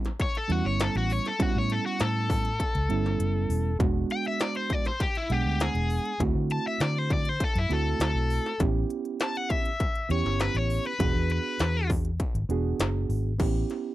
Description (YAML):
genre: straight-eighth soul blues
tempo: 100 BPM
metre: 4/4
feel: straight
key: A mixolydian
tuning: A4 = 440 Hz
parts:
  - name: reed electric piano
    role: accompaniment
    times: 0.0-13.9 s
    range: G3 to F#5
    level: -31 LUFS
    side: right 6 dB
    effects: none
  - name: industrial drum kit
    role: drums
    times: 0.0-13.8 s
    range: crash cymbal, hi-hat, kick drum, snare drum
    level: -29 LUFS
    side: left 1 dB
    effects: distortion
  - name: cranked stack guitar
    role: melody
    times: 0.2-11.9 s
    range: E4 to A5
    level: -30 LUFS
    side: left 2 dB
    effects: overdrive
  - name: vintage muted fingered electric bass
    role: bass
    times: 0.5-13.6 s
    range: E1 to D3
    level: -28 LUFS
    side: left 1 dB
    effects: none
room: little or no reverb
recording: dry, close 1970s-style studio recording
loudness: -25 LUFS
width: side -15 dB against mid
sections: 0.0-13.4 A section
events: overdriven electric guitar solo 0.0-13.4; kick and snare drop out 3.2-3.8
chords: 0.0 A9; 3.8 E9; 6.2 D9; 8.6 A9; 11.0 E9; 13.4 A9